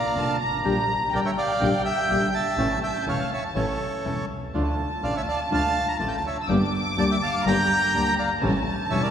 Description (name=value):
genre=tango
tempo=124 BPM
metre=4/4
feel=rubato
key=unclear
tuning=A4 = 439 Hz
part: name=bandoneon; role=melody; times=0.0-9.1 s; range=A4 to Bb5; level=-26 LUFS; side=right 1 dB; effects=none
part: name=dark studio violin section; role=second line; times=0.0-9.1 s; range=G5 to E6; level=-28 LUFS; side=equal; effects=none
part: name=nylon-string guitar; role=accompaniment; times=0.2-9.1 s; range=D3 to G4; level=-27 LUFS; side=left 2 dB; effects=none
part: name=bandoneon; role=stabs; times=0.2-9.1 s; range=A3 to G4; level=-37 LUFS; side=right 2 dB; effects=none
part: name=warm double bass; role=bass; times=0.2-9.1 s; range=E1 to D2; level=-29 LUFS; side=right 1 dB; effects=none
room=wet church reverb, RT60 3.5 s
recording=recorded in a church or concert hall, vinyl crackle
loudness=-22 LUFS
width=side -8 dB against mid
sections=0.0-9.1 A section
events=none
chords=0.0 Bb; 0.6 Gm/Bb; 2.6 A; 4.5 Dm; 6.5 Gm; 8.4 A7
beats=0.16 | 0.64 1.13 1.61 2.09 | 2.58 3.06 3.55 4.04 | 4.54 5.03 5.52 6.01 | 6.49 6.98 7.46 7.94 | 8.42 8.91